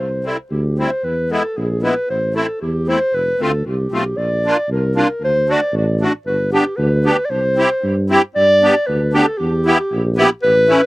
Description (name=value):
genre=alpine folk, alpine dance band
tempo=115 BPM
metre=2/4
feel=straight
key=C major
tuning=A4 = 440 Hz
part: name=dark clarinet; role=melody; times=0.0-10.9 s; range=G4 to D5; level=-17 LUFS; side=equal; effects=none
part: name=dark tuba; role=bass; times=0.0-10.8 s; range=F1 to G2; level=-20 LUFS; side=equal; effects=none
part: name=musette accordion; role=accompaniment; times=0.2-10.8 s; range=G3 to G4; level=-17 LUFS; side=equal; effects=slapback echo
room=light reverb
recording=recorded outdoors, with no room sound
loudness=-14 LUFS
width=side -19 dB against mid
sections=0.0-8.4 A section; 8.4-10.9 B section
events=none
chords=0.0 C; 1.0 E; 2.1 Am; 3.1 F; 4.2 Bb; 5.2 D; 6.3 G; 7.3 C; 8.4 G; 9.4 Em